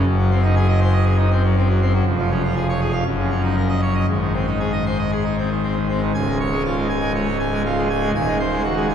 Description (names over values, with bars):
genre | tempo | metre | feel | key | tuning
classical, organ toccata | 120 BPM | 4/4 | straight | Db major | A4 = 440 Hz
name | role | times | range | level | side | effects
pipe organ, full organ | solo | 0.0-8.9 s | Db1 to Ab5 | -17 LUFS | equal | none
room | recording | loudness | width
wet cathedral reverb, RT60 6.8 s | heard from further back in the room | -17 LUFS | side -8 dB against mid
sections
0.0-6.1 A section; 6.1-8.9 B section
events
none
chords
0.1 Ab7/Gb; 2.1 Db/F; 3.1 Ebm7/Gb; 4.1 Ab; 6.1 Db; 8.1 Ab7/Eb